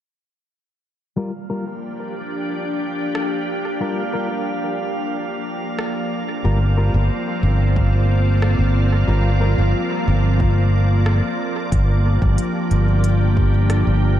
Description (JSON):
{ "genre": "ambient dub", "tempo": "91 BPM", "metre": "4/4", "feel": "straight", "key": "G minor", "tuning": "A4 = 439 Hz", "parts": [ { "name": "soft additive organ-like pad", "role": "sustained chords", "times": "1.5-14.2 s", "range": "F3 to D5", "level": "-22 LUFS", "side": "equal", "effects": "ensemble chorus, built-in reverb" }, { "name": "clean electric guitar", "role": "stabs", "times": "1.2-9.5 s", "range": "G3 to Bb4", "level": "-30 LUFS", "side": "left 2 dB", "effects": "harmonic tremolo, low-pass filter, dub echo" }, { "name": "drifting glass-harmonics texture", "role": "texture", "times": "1.2-11.7 s", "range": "F5", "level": "-34 LUFS", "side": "right 5 dB", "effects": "chorus, built-in reverb" }, { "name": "organic electronic drum kit", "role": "drums", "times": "3.1-13.8 s", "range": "hi-hat, rim click", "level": "-35 LUFS", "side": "right 1 dB", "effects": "none" }, { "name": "fingered electric bass", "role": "bass", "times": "6.4-14.2 s", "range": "G1", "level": "-16 LUFS", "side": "equal", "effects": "none" }, { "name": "electronic kick drum", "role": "drums", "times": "7.8-13.5 s", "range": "none", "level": "-21 LUFS", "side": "equal", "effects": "overdrive" } ], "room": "moderate cathedral reverb, RT60 6.3 s", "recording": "dreamy mix soaked in reverb", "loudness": "-17 LUFS", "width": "side -11 dB against mid", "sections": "1.2-11.7 A section; 11.7-14.2 B section", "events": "none", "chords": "1.2 Gm7" }